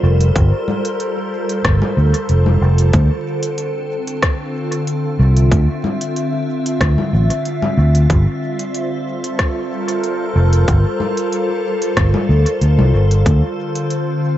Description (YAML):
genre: ambient dub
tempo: 93 BPM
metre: 4/4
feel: swing 53% on 16ths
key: G dorian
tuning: A4 = 441 Hz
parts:
  - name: soft additive organ-like pad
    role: sustained chords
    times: 0.0-14.4 s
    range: D3 to E5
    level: -20 LUFS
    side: equal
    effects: ensemble chorus, built-in reverb
  - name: fingered electric bass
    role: bass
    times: 0.0-13.4 s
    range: F1 to D2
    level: -12 LUFS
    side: equal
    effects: none
  - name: organic electronic drum kit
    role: drums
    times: 0.2-14.0 s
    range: congas, hi-hat, rim click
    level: -23 LUFS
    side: left 1 dB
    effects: dub echo
  - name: electronic kick drum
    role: drums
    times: 0.4-13.4 s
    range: none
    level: -17 LUFS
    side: equal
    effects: none
room: light reverb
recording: vinyl crackle, nothing above 7.9 kHz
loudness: -14 LUFS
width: side -13 dB against mid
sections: 0.0-14.4 A section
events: none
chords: 0.0 Gm11; 2.9 Dm9; 8.1 Gm11; 13.3 Dm7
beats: | 0.36 1.00 1.65 2.29 | 2.94 3.58 4.23 4.87 | 5.52 6.16 6.81 7.45 | 8.10 8.74 9.39 10.03 | 10.68 11.32 11.97 12.61 | 13.26 13.90